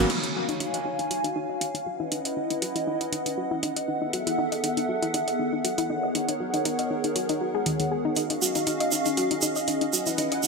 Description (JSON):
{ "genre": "deep house", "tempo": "119 BPM", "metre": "4/4", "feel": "swing 54% on 16ths", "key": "Eb phrygian", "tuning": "A4 = 440 Hz", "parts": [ { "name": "hollow soft pad", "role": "sustained chords", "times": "0.0-10.5 s", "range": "Cb4 to Ab5", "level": "-27 LUFS", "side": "equal", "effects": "ensemble chorus" }, { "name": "soft round pluck", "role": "arpeggios", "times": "0.0-10.5 s", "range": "Eb3 to Eb5", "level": "-30 LUFS", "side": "left 3 dB", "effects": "chorus, ping-pong delay" }, { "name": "deep house drum kit", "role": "drums", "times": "0.1-10.4 s", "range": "crash cymbal, hi-hat", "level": "-30 LUFS", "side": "right 1 dB", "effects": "gated reverb" }, { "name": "tube shaker", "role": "percussion", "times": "8.2-10.5 s", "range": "none", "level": "-29 LUFS", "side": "right 6 dB", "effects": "none" } ], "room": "wet plate reverb, RT60 2.6 s", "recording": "bright 1980s-style digital production", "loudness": "-24 LUFS", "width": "side -3 dB against mid", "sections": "0.1-10.5 A section", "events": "band accent 0.0; filter sweep on synth arpeggio sound 0.1-10.5", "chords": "0.1 Ebm11; 1.9 Dbm11; 3.9 Gbm11; 5.9 Abm11; 8.2 Ebm11; 9.9 Dbm11", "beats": "| 0.10 0.60 1.11 1.61 | 2.12 2.62 3.12 3.63 | 4.13 4.64 5.14 5.65 | 6.15 6.65 7.16 7.66 | 8.17 8.67 9.18 9.68 | 10.18" }